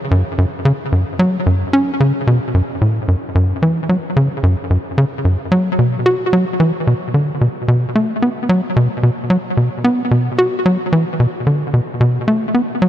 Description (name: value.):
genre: ambient.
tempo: 111 BPM.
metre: 4/4.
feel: straight.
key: F# minor, B minor from 5.8 s.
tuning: A4 = 442 Hz.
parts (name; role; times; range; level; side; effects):
tight sequencer bass; solo; 0.1-12.9 s; F#2 to F#4; -14 LUFS; equal; analog delay.
room: light reverb.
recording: none.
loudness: -14 LUFS.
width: side -11 dB against mid.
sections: 0.0-5.8 A section; 5.8-12.9 B section.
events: none.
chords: none.